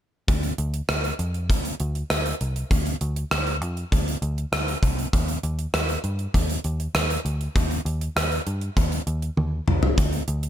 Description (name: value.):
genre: 1980s-style pop.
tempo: 99 BPM.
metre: 4/4.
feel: straight.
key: unclear.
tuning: A4 = 440 Hz.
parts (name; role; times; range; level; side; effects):
vintage muted picked electric bass; bass; 0.3-10.5 s; C2 to G2; -26 LUFS; equal; none.
gated 80s drum kit; drums; 0.3-10.5 s; hi-hat, kick drum, rim click, toms; -24 LUFS; equal; gated reverb.
room: little or no reverb.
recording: none.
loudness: -22 LUFS.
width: side -11 dB against mid.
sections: 0.3-10.0 A section.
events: drum fill 9.4-10.0.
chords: none.